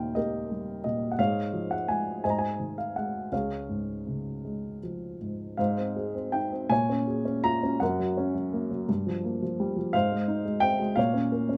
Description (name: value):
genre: classical, lyrical solo piano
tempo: 52-59 BPM (dotted quarters)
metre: 6/8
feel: rubato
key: Db major, Ab major from 5.6 s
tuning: A4 = 440 Hz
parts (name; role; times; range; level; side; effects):
- dark baby grand piano; solo; 0.0-11.6 s; Db2 to Bb5; -29 LUFS; equal; none
room: light reverb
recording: none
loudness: -29 LUFS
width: mono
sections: 0.0-5.6 A section; 5.6-11.6 B section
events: none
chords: 0.0 Eb7; 1.2 Db/Ab; 2.2 Ab; 3.3 Db; 5.6 Ab; 6.7 Bbm7; 7.8 Gb; 8.9 Gm7; 9.9 Ab; 11.0 Bbm